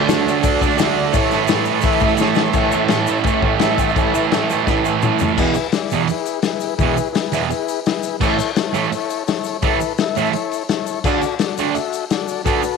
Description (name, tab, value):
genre	garage rock duo or trio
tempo	170 BPM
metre	4/4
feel	straight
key	unclear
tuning	A4 = 435 Hz
part	overdriven combo organ	sustained chords	0.0-12.8 s	E4 to E5	-22 LUFS	left 10 dB	none
part	fuzz guitar	riff	0.0-12.6 s	E2 to D4	-18 LUFS	right 10 dB	distortion
part	vintage drum kit	drums	0.1-12.7 s	crash cymbal, hi-hat, kick drum, snare drum, toms	-21 LUFS	left 5 dB	none
part	tube shaker	percussion	0.1-12.8 s	none	-36 LUFS	left 18 dB	none
room	moderate spring reverb, RT60 2.0 s, small room ambience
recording	1960s-style stereo with parts hard left and right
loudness	-16 LUFS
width	side -5 dB against mid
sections	0.0-2.6 A section; 2.6-5.4 B section; 5.4-12.8 C section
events	drum fill 2.2-2.6, 4.7-5.4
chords	0.0 D; 1.1 A; 5.4 E; 8.2 A; 11.0 D